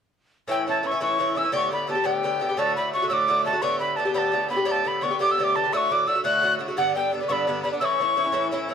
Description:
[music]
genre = celtic folk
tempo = 115 BPM (dotted quarters)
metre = 6/8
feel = straight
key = unclear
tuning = A4 = 439 Hz
[part]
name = breathy mellow mid whistle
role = melody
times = 0.5-8.5 s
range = F#5 to F#6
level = -23 LUFS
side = equal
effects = none
[part]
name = Irish bouzouki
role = accompaniment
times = 0.5-8.7 s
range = G2 to G4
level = -25 LUFS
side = equal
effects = none
[sound]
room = moderate studio reverb, RT60 0.6 s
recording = none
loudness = -21 LUFS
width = side -7 dB against mid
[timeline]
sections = 0.5-8.7 A section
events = none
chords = 0.5 A; 1.5 Gadd9; 2.6 D; 3.6 Gadd9; 5.7 D; 6.8 G; 7.8 A

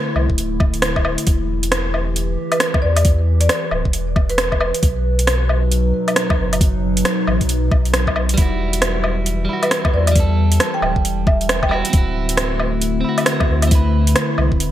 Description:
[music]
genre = future garage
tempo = 135 BPM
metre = 4/4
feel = swing 62% on 16ths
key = E minor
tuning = A4 = 440 Hz
[part]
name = warbly tape-like pad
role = sustained chords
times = 0.0-14.7 s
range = B2 to B4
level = -24 LUFS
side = left 1 dB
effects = chorus, built-in reverb, vintage 12-bit sampler grit, sidechain pumping
[part]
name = warm sub bass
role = bass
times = 0.2-14.7 s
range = D1 to E2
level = -19 LUFS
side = equal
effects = sidechain pumping
[part]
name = garage drum kit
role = drums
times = 0.2-14.7 s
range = hi-hat, rim click, woodblock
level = -20 LUFS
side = equal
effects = overdrive, small room reverb, gated reverb
[part]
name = electronic kick drum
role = drums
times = 0.3-14.6 s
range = none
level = -17 LUFS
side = equal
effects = overdrive, small room reverb
[part]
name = marimba with medium mallets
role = melody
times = 2.5-4.9, 9.6-11.9 s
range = B4 to G5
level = -24 LUFS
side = right 1 dB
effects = digital delay
[part]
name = clean electric guitar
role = accompaniment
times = 8.3-14.7 s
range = G3 to B4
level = -25 LUFS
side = right 3 dB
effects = vintage 12-bit sampler grit, sidechain pumping, digital delay
[sound]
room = light reverb, digital ambience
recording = bright 1980s-style digital production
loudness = -15 LUFS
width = side -12 dB against mid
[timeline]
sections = 0.0-14.7 A section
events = none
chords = 0.0 D5; 1.3 Em; 4.8 B; 8.4 Emadd9; 11.9 D7

